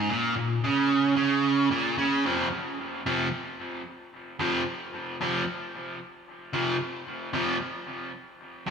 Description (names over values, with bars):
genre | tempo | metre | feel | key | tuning
rock | 112 BPM | 4/4 | straight | unclear | A4 = 440 Hz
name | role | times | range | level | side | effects
overdriven electric guitar | solo | 0.0-8.7 s | F2 to F3 | -26 LUFS | right 2 dB | slapback echo, tape echo
room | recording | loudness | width
wet lush hall reverb, RT60 1.9 s, digital ambience | big arena sound | -25 LUFS | side -6 dB against mid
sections
0.0-2.2 A section; 2.2-8.7 B section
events
none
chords
0.0 Absus4 (rootless); 2.2 F5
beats
| 0.10 0.64 1.18 1.71 | 2.25 2.78 3.32 3.86 | 4.39 4.93 5.47 6.00 | 6.54 7.08 7.62 8.15 | 8.69